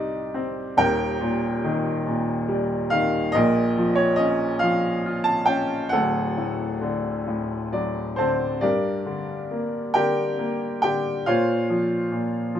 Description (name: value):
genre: classical, lyrical solo piano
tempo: 46 BPM (dotted quarters)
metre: 6/8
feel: uneven beats, rubato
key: G minor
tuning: A4 = 442 Hz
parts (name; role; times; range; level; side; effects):
- bright upright piano; solo; 0.0-12.6 s; D1 to A5; -21 LUFS; equal; none
room: light reverb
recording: close, detailed microphones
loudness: -21 LUFS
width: side -9 dB against mid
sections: 0.0-8.6 A section; 8.6-12.6 B section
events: upright piano fill 7.3-8.6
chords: 0.0 Cmadd9; 0.8 Eb; 3.3 Bbm; 5.9 D; 8.6 Gm; 11.3 Bbmadd9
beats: | 0.78 2.07 | 3.34 4.62 | 5.92 7.27 | 8.62 9.96 | 11.27 12.55